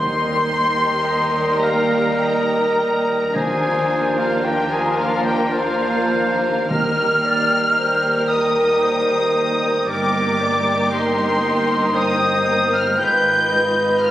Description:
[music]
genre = classical, slow romantic movement for symphony orchestra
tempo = 49-59 BPM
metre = 3/4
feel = rubato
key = Eb major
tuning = A4 = 440 Hz
[part]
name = warm symphonic violin section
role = melody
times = 0.0-14.1 s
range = F5 to G6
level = -24 LUFS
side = left 1 dB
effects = none
[part]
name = hollow concert flute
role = second line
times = 0.0-14.1 s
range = F5 to G6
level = -23 LUFS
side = left 1 dB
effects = none
[part]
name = warm oboe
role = second line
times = 0.0-14.1 s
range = F4 to G5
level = -28 LUFS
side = right 1 dB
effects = none
[part]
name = warm symphonic violin section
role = second line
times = 0.0-14.1 s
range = F4 to Cb5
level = -27 LUFS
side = equal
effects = none
[part]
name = rich symphonic viola section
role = accompaniment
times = 0.0-14.1 s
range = Ab3 to Eb4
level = -27 LUFS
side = right 3 dB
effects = none
[part]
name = warm French horn section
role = sustained chords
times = 0.0-14.1 s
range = Eb3 to Cb5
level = -22 LUFS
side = equal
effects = none
[part]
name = dark symphonic cello section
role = bass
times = 0.0-14.1 s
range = Eb2 to Ab2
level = -30 LUFS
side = right 2 dB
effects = none
[part]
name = warm symphonic double bass section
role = bass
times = 0.0-14.1 s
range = G1 to Eb2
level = -31 LUFS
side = right 2 dB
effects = none
[part]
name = timpani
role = percussion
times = 0.0-8.3 s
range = Eb3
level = -29 LUFS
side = left 1 dB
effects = none
[part]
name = mellow clarinet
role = second line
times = 1.0-14.1 s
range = Bb4 to F5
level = -24 LUFS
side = left 1 dB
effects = none
[sound]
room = wet scoring stage reverb, RT60 1.9 s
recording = recorded on a phone in the room, studio reverb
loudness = -16 LUFS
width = side -13 dB against mid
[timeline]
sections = 0.0-14.1 A section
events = none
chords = 0.0 Eb; 3.4 Bb/Eb; 6.7 Eb; 9.9 Eb/G; 13.0 Fm7b5/Ab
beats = 1.06 2.22 | 3.35 4.46 5.53 | 6.70 7.77 8.82 | 9.88 10.92 11.96 | 13.00 14.03

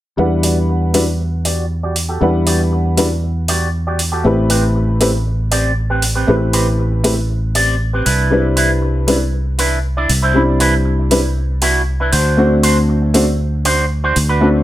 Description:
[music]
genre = nu-disco, nu disco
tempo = 118 BPM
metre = 4/4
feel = straight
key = E minor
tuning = A4 = 440 Hz
[part]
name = warm baby grand piano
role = accompaniment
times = 0.2-14.6 s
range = G3 to B5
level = -16 LUFS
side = left 1 dB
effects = low-pass filter, digital delay
[part]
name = fingered electric bass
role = bass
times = 0.2-14.6 s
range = A1 to E2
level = -16 LUFS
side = equal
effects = tube saturation
[part]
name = electric guitar with an envelope filter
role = riff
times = 0.4-14.5 s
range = C4 to D5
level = -19 LUFS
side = right 1 dB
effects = wide subtle chorus, low-pass filter, digital delay
[part]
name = electronic hi-hat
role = drums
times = 0.4-14.3 s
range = none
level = -21 LUFS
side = right 1 dB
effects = overdrive
[sound]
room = little or no reverb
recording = none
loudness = -13 LUFS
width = side -14 dB against mid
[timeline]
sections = 0.2-14.6 A section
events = filter sweep on clean electric guitar 0.2-14.6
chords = 0.2 Em9; 4.2 Am9; 8.1 Cmaj9; 12.1 D7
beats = | 0.18 0.69 1.20 1.70 | 2.21 2.72 3.23 3.74 | 4.25 4.75 5.26 5.77 | 6.28 6.79 7.30 7.81 | 8.31 8.82 9.33 9.84 | 10.35 10.86 11.37 11.87 | 12.38 12.89 13.40 13.91 | 14.42

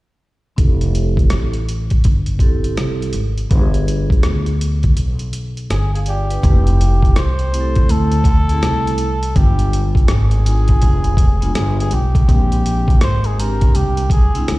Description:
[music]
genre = hip hop, jazz-hop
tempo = 82 BPM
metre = 4/4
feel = swing 63% on 16ths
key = unclear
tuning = A4 = 440 Hz
[part]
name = vibraphone with medium mallets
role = accompaniment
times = 0.6-14.6 s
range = Ab3 to Ab5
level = -25 LUFS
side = equal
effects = low-pass filter
[part]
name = upright bass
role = bass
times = 0.6-14.6 s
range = F1 to D2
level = -16 LUFS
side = equal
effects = none
[part]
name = boom bap sampler-style drum kit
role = drums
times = 0.6-14.6 s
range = hi-hat, kick drum, rim click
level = -16 LUFS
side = equal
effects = none
[part]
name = trumpet with cup mute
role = melody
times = 5.7-14.6 s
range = G4 to C5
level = -24 LUFS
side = equal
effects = tape echo
[sound]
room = small room ambience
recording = played on a big sound system in a bare room, large studio reverb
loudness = -13 LUFS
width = side -19 dB against mid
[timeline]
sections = 0.6-6.4 A section; 6.4-14.6 B section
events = filter sweep on vibraphone 0.6-6.4; break 5.0-6.4; vibraphone fill 5.3-6.4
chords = 0.6 Fmaj9; 3.5 G7b9; 6.4 Fmaj9; 9.4 G7b9; 12.3 Bb13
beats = | 0.58 1.31 2.04 2.78 | 3.51 4.24 4.97 5.70 | 6.43 7.17 7.90 8.63 | 9.36 10.09 10.82 11.56 | 12.29 13.02 13.75 14.48

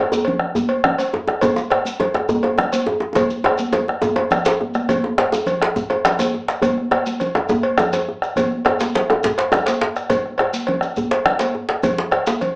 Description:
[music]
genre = west african traditional, West African drum ensemble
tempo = 138 BPM (dotted quarters)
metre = 12/8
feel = straight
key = none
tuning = none
[part]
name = congas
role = percussion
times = 0.1-12.6 s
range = none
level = -24 LUFS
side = equal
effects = none
[part]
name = djembe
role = percussion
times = 0.1-12.4 s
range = none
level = -20 LUFS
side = equal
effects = none
[part]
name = shekere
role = percussion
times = 0.1-12.5 s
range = none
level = -34 LUFS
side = left 1 dB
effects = none
[part]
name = cowbell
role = percussion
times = 0.2-12.5 s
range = none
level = -22 LUFS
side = equal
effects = none
[part]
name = bombo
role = percussion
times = 0.4-12.3 s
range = none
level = -21 LUFS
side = equal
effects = none
[part]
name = djembe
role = percussion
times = 0.6-12.3 s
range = none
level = -27 LUFS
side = equal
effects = none
[sound]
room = wet studio reverb, RT60 0.5 s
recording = small speaker sound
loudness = -16 LUFS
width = side -30 dB against mid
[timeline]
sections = 0.0-4.9 A section; 4.9-12.6 B section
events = drum fill 3.2-4.9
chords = none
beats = 0.12 0.56 0.99 | 1.42 1.86 2.29 2.73 | 3.16 3.59 4.03 4.46 | 4.90 5.33 5.76 6.20 | 6.63 7.07 7.50 7.93 | 8.37 8.80 9.23 9.67 | 10.10 10.54 10.97 11.40 | 11.84 12.27

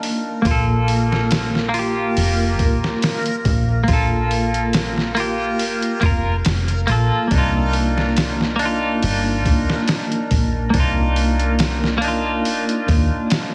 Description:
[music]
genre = trip hop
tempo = 70 BPM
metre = 4/4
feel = swing 54% on 16ths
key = C dorian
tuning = A4 = 437 Hz
[part]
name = clean electric guitar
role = accompaniment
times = 0.0-13.5 s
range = Bb3 to Bb4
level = -22 LUFS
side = equal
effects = harmonic tremolo, vintage 12-bit sampler grit, low-pass filter, tape echo
[part]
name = trip hop sampler-style drum kit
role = drums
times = 0.0-13.5 s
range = hi-hat, kick drum, snare drum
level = -24 LUFS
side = equal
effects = none
[part]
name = backwards swelling texture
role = texture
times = 0.0-13.5 s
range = Bb4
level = -34 LUFS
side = equal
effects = built-in reverb
[part]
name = deep dub fingered electric bass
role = bass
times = 0.4-13.1 s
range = F1 to Eb2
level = -23 LUFS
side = equal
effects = tube saturation
[sound]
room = digital ambience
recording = heavily compressed radio sound, small room ambience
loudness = -19 LUFS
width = mono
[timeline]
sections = 0.0-13.5 A section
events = none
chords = 0.5 Gm9; 7.3 Cm11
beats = | 0.46 1.32 2.17 3.03 | 3.89 4.74 5.60 6.46 | 7.32 8.17 9.03 9.89 | 10.74 11.60 12.46 13.32

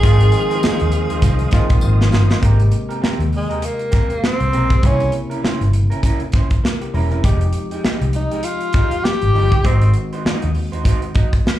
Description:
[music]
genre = lush 1970s-style soul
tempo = 100 BPM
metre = 4/4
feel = swing 58% on 16ths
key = Ab major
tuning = A4 = 440 Hz
[part]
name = breathy tenor saxophone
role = melody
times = 0.0-10.0 s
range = Ab3 to Ab4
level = -20 LUFS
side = equal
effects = slapback echo
[part]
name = barky tine electric piano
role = accompaniment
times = 0.0-11.6 s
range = C3 to Bb4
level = -25 LUFS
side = left 3 dB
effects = slapback echo
[part]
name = tonewheel organ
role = sustained chords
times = 0.0-2.4 s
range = C5 to Eb6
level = -30 LUFS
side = left 1 dB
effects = slow rotary speaker, chorus vibrato
[part]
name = electric guitar through a small old amp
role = riff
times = 0.0-11.5 s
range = Ab3 to Eb5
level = -28 LUFS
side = right 5 dB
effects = slapback echo
[part]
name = vintage muted fingered electric bass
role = bass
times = 0.0-10.7 s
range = E1 to Eb2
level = -16 LUFS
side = equal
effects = none
[part]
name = modern studio drum kit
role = drums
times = 0.0-11.6 s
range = hi-hat, kick drum, snare drum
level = -18 LUFS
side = equal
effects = none
[part]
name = tambourine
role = percussion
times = 0.0-2.4 s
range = none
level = -40 LUFS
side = left 3 dB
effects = none
[sound]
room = little or no reverb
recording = live gig heard through the venue's PA, club reverb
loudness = -14 LUFS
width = side -13 dB against mid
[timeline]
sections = 0.0-2.4 A section; 2.4-11.6 B section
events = drum fill 1.8-2.4; tenor saxophone solo 2.4-11.6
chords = 0.0 Ab6; 2.4 Abmaj9; 4.8 C7b9; 7.2 Fm9; 9.7 Ab7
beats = | 0.03 0.63 1.23 1.83 | 2.43 3.03 3.63 4.23 | 4.83 5.44 6.04 6.64 | 7.24 7.84 8.45 9.05 | 9.65 10.25 10.85 11.46

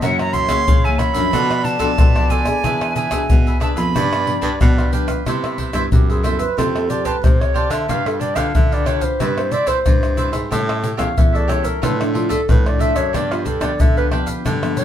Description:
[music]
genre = samba and choro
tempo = 91 BPM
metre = 4/4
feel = straight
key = C major from 5.3 s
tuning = A4 = 440 Hz
[part]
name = silver concert flute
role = melody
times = 0.0-4.9 s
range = F#5 to C6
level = -21 LUFS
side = right 4 dB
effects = none
[part]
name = dark clarinet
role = second line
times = 0.0-14.8 s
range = D4 to F5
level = -23 LUFS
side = right 1 dB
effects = none
[part]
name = cavaquinho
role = accompaniment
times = 0.0-14.8 s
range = D4 to A5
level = -26 LUFS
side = right 2 dB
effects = none
[part]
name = nylon-string guitar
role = accompaniment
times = 0.0-14.8 s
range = F#2 to B4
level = -26 LUFS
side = left 2 dB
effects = none
[part]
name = warm baritone saxophone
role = bass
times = 0.0-14.8 s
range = E2 to D3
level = -24 LUFS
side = equal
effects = none
[part]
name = tube shaker, surdo, pandeiro and tamborim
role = percussion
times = 0.0-14.8 s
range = none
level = -18 LUFS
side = left 1 dB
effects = none
[sound]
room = moderate studio ambience, RT60 0.5 s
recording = band playing live in one room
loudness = -15 LUFS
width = side -10 dB against mid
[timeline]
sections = 0.0-5.3 A section; 5.3-14.8 B section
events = clarinet solo 5.3-14.8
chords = 0.0 F#7; 1.3 Bm7b5; 2.6 E7; 4.0 G7; 5.3 Cmaj7; 6.6 Fadd9; 7.9 G7; 9.2 Cmaj7/G; 10.5 A7; 11.8 Dmadd9/A; 13.1 G7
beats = | 0.02 0.68 1.33 1.99 | 2.64 3.30 3.96 4.61 | 5.27 5.92 6.58 7.24 | 7.89 8.55 9.20 9.86 | 10.52 11.17 11.83 12.49 | 13.14 13.80 14.46

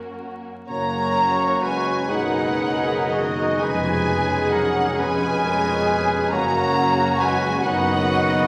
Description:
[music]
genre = classical, slow romantic movement for symphony orchestra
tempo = 37-45 BPM (dotted quarters)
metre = 6/8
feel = rubato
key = F# major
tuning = A4 = 440 Hz
[part]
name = rich studio violin section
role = second line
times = 0.0-8.5 s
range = F#4 to D#5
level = -33 LUFS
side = equal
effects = none
[part]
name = rich studio viola section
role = accompaniment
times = 0.0-8.5 s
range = A#3 to G#4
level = -34 LUFS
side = equal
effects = none
[part]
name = rich studio cello section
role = bass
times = 0.0-8.5 s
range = E#2 to F#2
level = -35 LUFS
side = equal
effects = none
[part]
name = rich studio violin section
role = melody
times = 0.7-8.5 s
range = D#5 to A#5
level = -29 LUFS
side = equal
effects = none
[part]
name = clear clarinet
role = second line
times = 0.7-8.5 s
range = B3 to F#4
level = -36 LUFS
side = equal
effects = none
[part]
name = small flute group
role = second line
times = 0.7-8.3 s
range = D#5 to A#5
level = -29 LUFS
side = equal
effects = none
[part]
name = warm oboe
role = second line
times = 0.7-8.5 s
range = F#4 to C#5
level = -30 LUFS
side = equal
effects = none
[part]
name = mellow bassoon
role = accompaniment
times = 0.7-8.5 s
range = D#3 to G#3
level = -34 LUFS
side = equal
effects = none
[part]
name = mellow French horn section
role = sustained chords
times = 0.7-8.5 s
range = D#3 to A#3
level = -32 LUFS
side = equal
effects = none
[part]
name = warm trombone section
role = sustained chords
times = 0.7-8.5 s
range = B2 to D#4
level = -31 LUFS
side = equal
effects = none
[part]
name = dark trumpet section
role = stabs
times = 0.7-8.5 s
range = F#4 to G#4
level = -30 LUFS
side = equal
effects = none
[part]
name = bright studio double bass section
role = bass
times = 0.7-8.5 s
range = E#1 to F#1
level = -34 LUFS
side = equal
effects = none
[part]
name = mellow tuba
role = bass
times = 0.7-8.5 s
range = none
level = barely audible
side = none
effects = none
[sound]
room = wet scoring stage reverb, RT60 1.8 s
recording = vinyl crackle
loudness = -21 LUFS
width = mono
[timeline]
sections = 0.7-8.5 A section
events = none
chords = 0.0 F#; 2.1 G#m7/F#; 3.6 C#7/E#; 6.3 F#; 7.7 B/F#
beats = | 0.70 2.10 | 3.61 4.97 | 6.33 7.66

